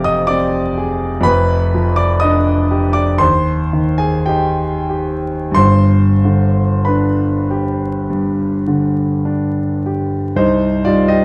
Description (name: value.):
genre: classical, romantic nocturne for solo piano.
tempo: 43-63 BPM.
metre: 4/4.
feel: rubato.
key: C minor.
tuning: A4 = 440 Hz.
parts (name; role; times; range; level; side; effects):
clear concert grand piano; solo; 0.0-11.2 s; F1 to F6; -15 LUFS; equal; none.
room: moderate large studio reverb, RT60 0.9 s.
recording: dark, warm production, vinyl crackle.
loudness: -15 LUFS.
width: mono.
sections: 0.0-10.4 A section.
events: none.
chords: 0.0 Dm7b5/F; 1.3 G7/F; 3.2 Cm/Eb; 5.6 G; 10.4 Cm.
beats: 0.30 | 1.26 2.24 3.22 4.28 | 5.58 6.88 8.09 9.25 | 10.38.